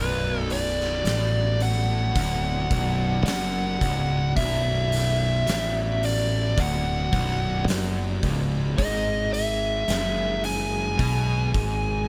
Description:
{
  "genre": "stoner and doom metal",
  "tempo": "54 BPM",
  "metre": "4/4",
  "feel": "straight",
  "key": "B dorian",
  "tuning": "A4 = 442 Hz",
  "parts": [
    { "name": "fuzz lead guitar", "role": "melody", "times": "0.0-12.1 s", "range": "B4 to G#5", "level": "-30 LUFS", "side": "equal", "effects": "distortion, delay" },
    { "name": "tonewheel organ", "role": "sustained chords", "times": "0.0-12.1 s", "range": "D#3 to D5", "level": "-37 LUFS", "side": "equal", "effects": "slow rotary speaker, chorus vibrato" },
    { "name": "fuzz guitar", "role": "riff", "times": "0.0-12.1 s", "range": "B1 to B2", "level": "-29 LUFS", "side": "equal", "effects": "distortion" },
    { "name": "fuzz fingered electric bass", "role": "bass", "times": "0.0-12.1 s", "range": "B0 to B1", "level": "-31 LUFS", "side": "equal", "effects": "overdrive" },
    { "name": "oversized low-tuned drum kit", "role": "drums", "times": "0.5-11.8 s", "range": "hi-hat, kick drum, snare drum", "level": "-33 LUFS", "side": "equal", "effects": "none" }
  ],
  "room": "light reverb",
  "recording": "none",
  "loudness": "-24 LUFS",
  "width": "mono",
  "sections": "0.0-12.1 A section",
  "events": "none",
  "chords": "0.0 Bm; 8.8 G#5"
}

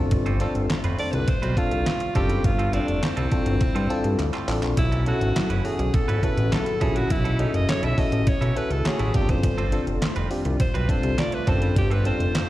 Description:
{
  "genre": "early-eighties boogie funk",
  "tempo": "103 BPM",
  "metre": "4/4",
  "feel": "straight",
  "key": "unclear",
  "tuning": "A4 = 440 Hz",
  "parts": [
    { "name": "FM electric piano", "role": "accompaniment", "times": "0.0-12.3 s", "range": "C4 to A4", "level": "-29 LUFS", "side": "left 2 dB", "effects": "chorus, slapback echo" },
    { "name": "mellow woodwind section", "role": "sustained chords", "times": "0.0-12.5 s", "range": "B2 to F4", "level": "-35 LUFS", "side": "left 1 dB", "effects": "none" },
    { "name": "fat analog bass", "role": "bass", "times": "0.0-12.3 s", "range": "F1 to G2", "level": "-24 LUFS", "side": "equal", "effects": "none" },
    { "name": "clean electric guitar", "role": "riff", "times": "0.1-12.4 s", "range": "F#3 to B4", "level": "-36 LUFS", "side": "right 6 dB", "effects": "wide subtle chorus, slapback echo" },
    { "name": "detuned 8-bit digital drum machine", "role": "drums", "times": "0.1-12.5 s", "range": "handclaps, hi-hat, kick drum, snare drum", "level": "-25 LUFS", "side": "equal", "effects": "overdrive" },
    { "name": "edgy alto saxophone", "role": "melody", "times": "1.0-12.5 s", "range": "C4 to E5", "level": "-28 LUFS", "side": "right 1 dB", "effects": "slapback echo" },
    { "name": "mellow synth brass", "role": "second line", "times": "5.4-12.5 s", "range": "F#3 to D5", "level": "-31 LUFS", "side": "left 1 dB", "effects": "chorus, slapback echo" }
  ],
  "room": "light reverb",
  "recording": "live gig heard through the venue's PA, recital hall reverb",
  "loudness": "-20 LUFS",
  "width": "side -15 dB against mid",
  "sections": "0.0-12.5 A section",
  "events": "alto saxophone solo 0.0-12.5; drum fill 4.2-4.8",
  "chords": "0.0 G9sus4; 4.8 B9sus4; 9.1 G9sus4"
}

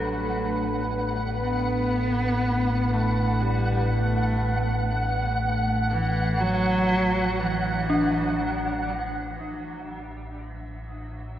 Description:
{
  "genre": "dark ambient drone",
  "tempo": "60 BPM",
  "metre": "4/4",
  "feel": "straight",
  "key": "unclear",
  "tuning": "A4 = 440 Hz",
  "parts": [
    { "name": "dark cello", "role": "melody", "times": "0.0-8.9 s", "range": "E3 to B3", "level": "-28 LUFS", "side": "right 1 dB", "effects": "diffuse ambient delay" },
    { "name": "deep dark ambient pad", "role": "sustained chords", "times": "0.0-9.4 s", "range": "A3 to B4", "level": "-32 LUFS", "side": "equal", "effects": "chorus, built-in reverb" },
    { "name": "dark detuned synth bell", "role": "arpeggios", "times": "0.0-11.4 s", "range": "D4 to A4", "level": "-32 LUFS", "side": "left 1 dB", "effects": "chorus, tremolo, diffuse ambient delay" },
    { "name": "deep rumbling drone", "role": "drone", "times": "0.0-11.4 s", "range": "A1 to A2", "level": "-28 LUFS", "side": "equal", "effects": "built-in reverb" },
    { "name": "flickering grainy texture", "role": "texture", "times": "0.0-11.4 s", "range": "E5 to F#5", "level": "-31 LUFS", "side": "right 1 dB", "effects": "built-in reverb" }
  ],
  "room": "wet cathedral reverb, RT60 6.4 s",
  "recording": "none",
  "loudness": "-22 LUFS",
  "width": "side -11 dB against mid",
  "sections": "0.0-9.4 A section; 9.4-11.4 B section",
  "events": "fade-in on synth texture 0.0-9.4; fade-in on synth bell 0.0-9.4; fade-in on cello 0.0-9.4",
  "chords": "0.0 Asus2; 9.4 A5"
}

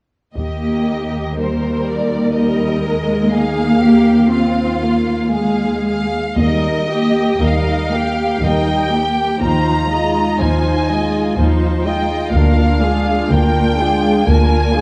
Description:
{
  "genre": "classical, slow romantic movement for symphony orchestra",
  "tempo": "60 BPM",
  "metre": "3/4",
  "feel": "uneven beats, rubato",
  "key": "Eb major",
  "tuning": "A4 = 441 Hz",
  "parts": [
    { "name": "rich studio violin section", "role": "melody", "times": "0.4-14.8 s", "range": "C5 to Bb5", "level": "-24 LUFS", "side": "equal", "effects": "none" },
    { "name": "rich studio violin section", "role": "second line", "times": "0.4-14.8 s", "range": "D4 to G5", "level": "-24 LUFS", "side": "equal", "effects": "none" },
    { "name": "dark studio viola section", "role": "accompaniment", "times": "0.4-14.8 s", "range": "F3 to G4", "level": "-20 LUFS", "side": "equal", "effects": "none" },
    { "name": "clear studio double bass section", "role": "bass", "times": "0.4-1.3, 6.4-14.8 s", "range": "D2 to Eb2", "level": "-20 LUFS", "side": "equal", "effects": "none" },
    { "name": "rich studio cello section", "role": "bass", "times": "0.4-14.8 s", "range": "D2 to Eb2", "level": "-23 LUFS", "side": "equal", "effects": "none" }
  ],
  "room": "moderate scoring stage reverb, RT60 1.8 s",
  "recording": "dark, warm production, lossy compression artefacts",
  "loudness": "-16 LUFS",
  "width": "mono",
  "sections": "0.4-6.4 A section; 6.4-14.8 B section",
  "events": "none",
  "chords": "0.4 Eb; 3.3 Bb5/Eb; 6.4 Eb; 9.4 Fm7/Eb; 12.3 Bb7/D"
}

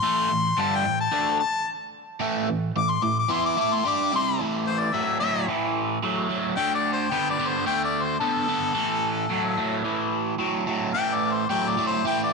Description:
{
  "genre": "rock",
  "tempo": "110 BPM",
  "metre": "4/4",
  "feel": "straight",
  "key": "A minor",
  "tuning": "A4 = 441 Hz",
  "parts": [
    { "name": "clear harmonica", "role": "melody", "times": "0.0-12.3 s", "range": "A4 to D6", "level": "-25 LUFS", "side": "left 5 dB", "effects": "overdrive, slapback echo" },
    { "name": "crunchy overdriven guitar", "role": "riff", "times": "0.0-12.3 s", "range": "G2 to A4", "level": "-25 LUFS", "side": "right 3 dB", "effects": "phaser" }
  ],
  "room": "moderate echo chamber reverb, RT60 2.2 s",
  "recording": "none",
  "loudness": "-22 LUFS",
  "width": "side -3 dB against mid",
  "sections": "0.0-4.4 A section; 4.4-12.3 B section",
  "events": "harmonica solo 0.0-4.4",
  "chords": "0.0 Am; 4.4 A5; 6.6 D5; 8.8 A5"
}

